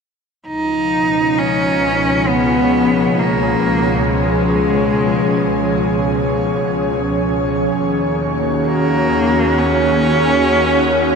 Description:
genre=ambient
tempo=66 BPM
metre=4/4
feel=straight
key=unclear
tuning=A4 = 443 Hz
part: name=clear cello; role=melody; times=0.5-11.2 s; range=Ab3 to Eb4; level=-17 LUFS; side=equal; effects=shimmer reverb, ping-pong delay
part: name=airy breathy pad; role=sustained chords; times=0.5-11.2 s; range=Cb3 to Db5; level=-16 LUFS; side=equal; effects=chorus, shimmer reverb
part: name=bright studio double bass section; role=bass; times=0.5-11.2 s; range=Db2 to Eb2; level=-24 LUFS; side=left 1 dB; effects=none
room=wet huge ambient reverb, RT60 8.0 s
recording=none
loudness=-14 LUFS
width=side -5 dB against mid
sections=0.5-11.2 A section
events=none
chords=0.5 Db7; 7.7 Ebm7

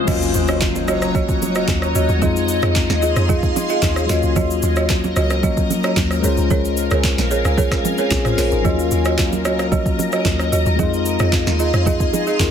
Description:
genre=amapiano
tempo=112 BPM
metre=4/4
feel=straight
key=Eb dorian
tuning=A4 = 439 Hz
part: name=tine electric piano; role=accompaniment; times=0.0-12.5 s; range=Gb3 to Db5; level=-22 LUFS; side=left 6 dB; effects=phaser
part: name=granular cloud pad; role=sustained chords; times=0.0-12.5 s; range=Gb3 to C6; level=-24 LUFS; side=left 2 dB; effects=built-in reverb, phaser, sidechain pumping
part: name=folk marimba with medium hard mallets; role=stabs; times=0.1-12.4 s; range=F4 to Eb5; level=-24 LUFS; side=right 5 dB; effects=digital delay
part: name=deep log drum bass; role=bass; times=0.1-12.5 s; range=Ab1 to F2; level=-20 LUFS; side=equal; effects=none
part: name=smooth R&B drum kit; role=drums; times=0.1-12.5 s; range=crash cymbal, handclaps, hi-hat, kick drum, rim click, shaker, snare drum, toms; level=-21 LUFS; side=equal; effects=overdrive
part: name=congas and bongos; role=percussion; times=0.1-12.5 s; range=none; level=-27 LUFS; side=right 9 dB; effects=none
part: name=impact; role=sound effects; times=0.1-2.2 s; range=none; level=-30 LUFS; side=right 1 dB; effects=none
room=light reverb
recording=dense, heavily limited modern master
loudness=-15 LUFS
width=side -8 dB against mid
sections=0.1-12.5 A section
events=drop 0.1-12.5; impact 0.1-2.2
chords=0.1 Ebm7; 2.2 Fm7; 4.1 Ebm7; 6.2 Bbm7; 8.6 Ebm7; 10.8 Fm7

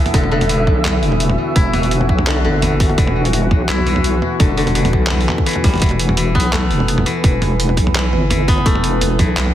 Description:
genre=half-time drum and bass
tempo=169 BPM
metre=4/4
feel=swing 53% on 16ths, half-time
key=unclear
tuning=A4 = 445 Hz
part: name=deep dark ambient pad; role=sustained chords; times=0.0-9.5 s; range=B3 to D5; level=-23 LUFS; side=equal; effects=chorus, built-in reverb, vintage 12-bit sampler grit, sidechain pumping
part: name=koto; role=arpeggios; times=0.0-9.5 s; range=D3 to E4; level=-20 LUFS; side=left 3 dB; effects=digital delay
part: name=flickering grainy texture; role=texture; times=0.0-5.8 s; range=E5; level=-28 LUFS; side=right 3 dB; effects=built-in reverb
part: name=deep soft wobble bass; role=bass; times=0.1-9.5 s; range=E1 to B1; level=-18 LUFS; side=equal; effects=chorus
part: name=boom bap sampler-style drum kit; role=drums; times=0.1-9.5 s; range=handclaps, hi-hat, toms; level=-21 LUFS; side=right 1 dB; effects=none
part: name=electronic kick drum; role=drums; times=0.1-9.3 s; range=none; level=-15 LUFS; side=equal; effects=none
room=light reverb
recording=heavily compressed radio sound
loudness=-13 LUFS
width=side -12 dB against mid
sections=0.0-5.8 A section; 5.8-9.5 A section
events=drop 0.0-5.8, 5.8-9.5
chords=0.0 E5

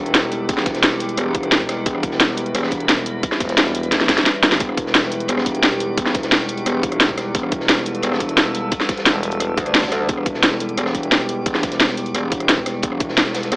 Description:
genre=dark technical drum and bass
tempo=175 BPM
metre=4/4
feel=straight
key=E minor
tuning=A4 = 443 Hz
part: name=metallic inharmonic drone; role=sustained chords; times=0.0-13.6 s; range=E3 to A4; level=-25 LUFS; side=equal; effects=chorus, built-in reverb, sidechain pumping
part: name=metallic wobble bass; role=bass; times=0.0-13.6 s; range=E1 to D2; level=-23 LUFS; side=equal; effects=chorus
part: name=crunchy breakbeat drum kit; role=drums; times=0.1-13.6 s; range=hi-hat, snare drum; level=-28 LUFS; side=equal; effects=high-pass filter on hats, high-pass filter on snare, high-pass filter on room
part: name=drum and bass drum kit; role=drums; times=0.1-13.6 s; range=hi-hat, rim click, snare drum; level=-16 LUFS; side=equal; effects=overdrive
part: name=electronic kick drum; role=drums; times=0.5-13.1 s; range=none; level=-23 LUFS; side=equal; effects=none
part: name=growling FM bass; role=bass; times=3.4-4.2, 9.1-9.6 s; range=E1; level=-24 LUFS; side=equal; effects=none
room=light reverb, digital ambience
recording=AM radio sound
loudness=-16 LUFS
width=side -26 dB against mid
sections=0.0-13.6 A section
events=drum fill 3.9-4.6; kick drops out 4.3-4.6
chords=0.0 Em

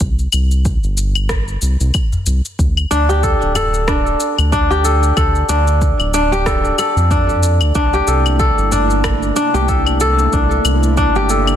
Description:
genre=organic downtempo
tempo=93 BPM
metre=4/4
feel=swing 57% on 16ths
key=unclear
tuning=A4 = 440 Hz
part: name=round analog bass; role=bass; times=0.0-11.6 s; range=D1 to F2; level=-16 LUFS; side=equal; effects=sidechain pumping
part: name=electronic cabasa, claves and rim click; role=drums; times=0.0-11.6 s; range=none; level=-22 LUFS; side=left 4 dB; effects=small room ambience, soft clipping on snare
part: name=electronic kick drum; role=drums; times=0.0-11.1 s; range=none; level=-19 LUFS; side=equal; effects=small room ambience
part: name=udu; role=percussion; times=2.1-8.9 s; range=none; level=-25 LUFS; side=left 1 dB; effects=none
part: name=kora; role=arpeggios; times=2.9-11.6 s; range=D4 to A4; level=-16 LUFS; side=left 1 dB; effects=digital delay
part: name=airy breathy pad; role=sustained chords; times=7.7-11.6 s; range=C3 to E4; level=-22 LUFS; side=right 2 dB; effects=chorus, sidechain pumping
room=light reverb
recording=dense, heavily limited modern master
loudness=-12 LUFS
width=side -10 dB against mid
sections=0.0-11.6 A section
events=none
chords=0.0 C5; 2.6 Dmadd11; 7.8 C13

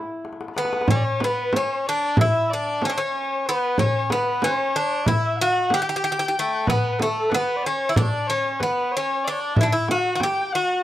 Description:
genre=Turkish makam ensemble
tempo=187 BPM (eighths)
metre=9/8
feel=straight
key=unclear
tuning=A4 = 439 Hz
part: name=Greek bouzouki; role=melody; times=0.0-10.8 s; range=A3 to G4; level=-22 LUFS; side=equal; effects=none
part: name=darbuka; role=percussion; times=0.2-10.4 s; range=none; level=-27 LUFS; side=left 1 dB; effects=none
part: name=warm kamancheh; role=second line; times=0.6-10.8 s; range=A4 to G5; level=-27 LUFS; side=left 4 dB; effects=none
part: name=frame drum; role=percussion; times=0.9-10.4 s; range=none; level=-24 LUFS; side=right 2 dB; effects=none
room=small room ambience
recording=dry, close 1970s-style studio recording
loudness=-20 LUFS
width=side -13 dB against mid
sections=0.9-10.8 A section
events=drum fill 0.2-0.9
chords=none

